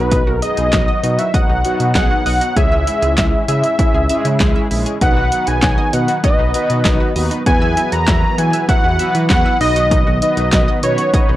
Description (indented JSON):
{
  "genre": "synth-pop",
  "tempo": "98 BPM",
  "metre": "4/4",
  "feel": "straight",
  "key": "B major",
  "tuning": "A4 = 439 Hz",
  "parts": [
    { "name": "wide unison lead", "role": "melody", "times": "0.0-11.4 s", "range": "B4 to A#5", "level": "-18 LUFS", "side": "equal", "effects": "tape echo" },
    { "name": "mellow synth brass", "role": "accompaniment", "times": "0.0-11.4 s", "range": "F#3 to C#5", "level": "-21 LUFS", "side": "equal", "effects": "chorus" },
    { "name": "analog pluck", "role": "arpeggios", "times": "0.0-11.4 s", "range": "D#4 to E5", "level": "-28 LUFS", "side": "right 2 dB", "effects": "chorus, tape echo" },
    { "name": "smooth synth bass", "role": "bass", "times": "0.0-11.4 s", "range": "A#1 to E3", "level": "-19 LUFS", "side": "equal", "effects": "none" },
    { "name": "punchy analog drum machine", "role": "drums", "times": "0.1-11.3 s", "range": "handclaps, hi-hat, kick drum, snare drum", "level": "-16 LUFS", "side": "equal", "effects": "none" },
    { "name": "brassy analog pad", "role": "sustained chords", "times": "5.0-11.4 s", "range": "D#3 to B3", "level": "-26 LUFS", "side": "right 2 dB", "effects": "none" }
  ],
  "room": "little or no reverb",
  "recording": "dry, gritty hardware recording, cassette tape",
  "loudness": "-12 LUFS",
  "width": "side -14 dB against mid",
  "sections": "0.0-11.4 A section",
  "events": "none",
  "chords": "0.0 B; 2.6 C#m; 5.0 B; 7.5 Esus2; 9.6 B",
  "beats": "| 0.12 0.73 1.34 1.95 | 2.57 3.18 3.79 4.40 | 5.01 5.63 6.24 6.85 | 7.46 8.08 8.69 9.30 | 9.91 10.53 11.14"
}